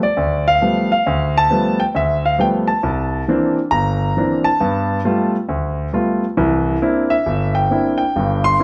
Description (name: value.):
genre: solo jazz.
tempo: 135 BPM.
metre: 4/4.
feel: swing 65% on 8ths.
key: unclear.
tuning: A4 = 440 Hz.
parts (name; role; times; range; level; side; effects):
warm grand piano; solo; 0.0-8.6 s; G1 to C6; -17 LUFS; equal; none.
room: moderate large studio reverb, RT60 1.3 s.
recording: none.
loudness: -18 LUFS.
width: mono.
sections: 0.0-8.6 A section.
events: none.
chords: 0.0 G9; 2.8 C9; 4.6 G9; 6.4 C9.